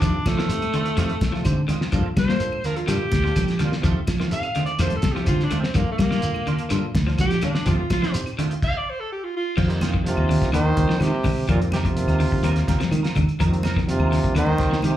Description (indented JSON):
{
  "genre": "afrobeat",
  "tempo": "126 BPM",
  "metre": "4/4",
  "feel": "straight",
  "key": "unclear",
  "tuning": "A4 = 440 Hz",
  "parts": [
    { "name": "warm alto saxophone", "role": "melody", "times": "0.0-9.6 s", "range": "A3 to F5", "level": "-26 LUFS", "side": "right 1 dB", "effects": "slapback echo" },
    { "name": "overdriven tine electric piano", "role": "accompaniment", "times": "0.0-14.9 s", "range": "Eb3 to C5", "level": "-34 LUFS", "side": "right 2 dB", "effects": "slapback echo" },
    { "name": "clean electric guitar", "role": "arpeggios", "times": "0.0-14.9 s", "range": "Bb2 to F3", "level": "-29 LUFS", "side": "left 6 dB", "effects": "none" },
    { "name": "semi-hollow electric guitar", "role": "stabs", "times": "0.0-15.0 s", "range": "Eb3 to Bb4", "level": "-33 LUFS", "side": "right 8 dB", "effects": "ensemble chorus, slapback echo" },
    { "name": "fingered electric bass", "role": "bass", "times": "0.0-14.9 s", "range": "C2 to G3", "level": "-22 LUFS", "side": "equal", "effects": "none" },
    { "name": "cloth-damped thuddy drum kit", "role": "drums", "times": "0.0-14.9 s", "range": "crash cymbal, hi-hat, kick drum, snare drum", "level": "-26 LUFS", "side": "equal", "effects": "none" },
    { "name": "congas", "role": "percussion", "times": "0.0-14.9 s", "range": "none", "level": "-29 LUFS", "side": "right 1 dB", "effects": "none" },
    { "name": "shekere", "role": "percussion", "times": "0.0-8.5 s", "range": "none", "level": "-31 LUFS", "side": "equal", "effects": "none" },
    { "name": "claves", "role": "percussion", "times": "0.3-14.9 s", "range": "none", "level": "-40 LUFS", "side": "left 2 dB", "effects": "slapback echo" },
    { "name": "breathy trombone", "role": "melody", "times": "10.1-15.0 s", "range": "Bb2 to Eb3", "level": "-23 LUFS", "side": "right 1 dB", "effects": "slapback echo" },
    { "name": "warm trumpet", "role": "second line", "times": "10.1-15.0 s", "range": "F4 to C5", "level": "-31 LUFS", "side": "right 4 dB", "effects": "slapback echo" }
  ],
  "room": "light reverb",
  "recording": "live gig heard through the venue's PA, club reverb",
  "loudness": "-19 LUFS",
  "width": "side -12 dB against mid",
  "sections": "0.0-9.6 A section; 9.6-15.0 B section",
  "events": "alto saxophone solo 0.0-9.6; stop 8.6-9.6",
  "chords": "0.0 F7; 1.9 Gm7; 3.8 F7; 5.7 Gm7; 7.7 F7; 9.6 F7sus4; 10.5 Eb69"
}